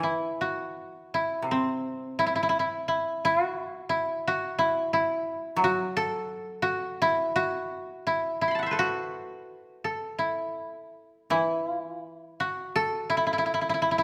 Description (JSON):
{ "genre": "japanese traditional, Japanese chamber music", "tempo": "77-88 BPM", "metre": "4/4", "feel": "rubato", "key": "unclear", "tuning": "A4 = 440 Hz", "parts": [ { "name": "koto", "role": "melody", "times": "0.0-14.0 s", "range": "C4 to C6", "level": "-28 LUFS", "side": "equal", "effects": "none" }, { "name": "koto", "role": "accompaniment", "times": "0.0-13.4 s", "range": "C3 to F#3", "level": "-34 LUFS", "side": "equal", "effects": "none" } ], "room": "moderate recital hall reverb, RT60 1.6 s", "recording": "none", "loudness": "-28 LUFS", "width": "mono", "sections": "0.0-11.3 A section; 11.3-14.0 B section", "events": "none", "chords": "none" }